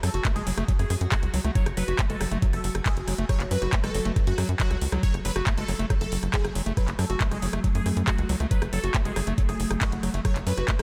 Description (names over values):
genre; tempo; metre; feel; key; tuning
psychedelic trance; 138 BPM; 4/4; straight; F# minor; A4 = 440 Hz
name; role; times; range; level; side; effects
supersaw stab; melody; 0.0-10.8 s; F#4 to C#5; -38 LUFS; equal; phaser, sidechain pumping, delay
evolving wavetable pad; sustained chords; 0.0-10.8 s; F#3 to F#4; -38 LUFS; equal; phaser, built-in reverb, sidechain pumping
overdriven acid bass; riff; 0.0-10.8 s; F#3 to F#4; -35 LUFS; equal; distortion, sidechain pumping, tape echo
tight sequencer bass; bass; 0.0-10.8 s; F#1 to F#2; -30 LUFS; equal; none
garage drum kit; drums; 0.0-10.8 s; handclaps, hi-hat, rim click; -35 LUFS; equal; none
electronic kick drum; drums; 0.2-10.8 s; none; -27 LUFS; equal; none
room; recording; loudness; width
light reverb; none; -26 LUFS; mono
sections
0.0-10.8 A section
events
none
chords
0.0 F#5